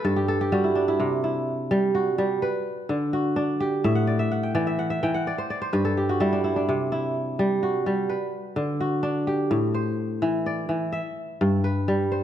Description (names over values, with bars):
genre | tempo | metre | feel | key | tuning
west african traditional | 84 BPM (dotted quarters) | 12/8 | straight | C lydian | A4 = 439 Hz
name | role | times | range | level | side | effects
kora | solo | 0.0-12.2 s | G2 to G5 | -22 LUFS | equal | none
room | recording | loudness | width
moderate recital hall reverb, RT60 1.7 s | none | -22 LUFS | side -10 dB against mid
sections
0.0-12.2 A section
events
kora fill 0.0-1.0, 3.8-6.7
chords
0.0 N.C.; 1.0 C; 2.4 D; 3.8 A5; 5.3 N.C.; 6.7 C; 8.1 D; 9.5 Am; 10.9 G